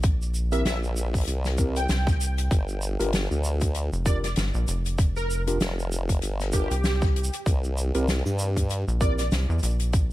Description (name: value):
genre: glitch hop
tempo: 97 BPM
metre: 4/4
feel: swing 57% on 16ths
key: G dorian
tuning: A4 = 441 Hz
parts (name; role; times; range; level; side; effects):
- rubbery square bass; bass; 0.0-10.1 s; F1 to E2; -25 LUFS; equal; none
- electronic kick drum; drums; 0.0-10.1 s; none; -23 LUFS; equal; none
- soft-mallet drum kit; drums; 0.0-10.1 s; hi-hat, shaker, snare drum; -31 LUFS; left 1 dB; none
- plucky unison lead; melody; 0.5-9.3 s; G4 to G5; -34 LUFS; right 1 dB; ensemble chorus, tape echo
- mellow tine electric piano; stabs; 0.5-9.2 s; C4 to Bb4; -32 LUFS; equal; medium stereo tremolo, sidechain pumping, tape echo
- formant-sweep wobble bass; bass; 0.7-8.8 s; F1 to G2; -26 LUFS; equal; chorus
room: small room ambience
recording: vinyl crackle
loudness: -23 LUFS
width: side -16 dB against mid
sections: 0.0-10.1 A section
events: none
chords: 0.0 C7; 2.5 Gm7; 7.5 C7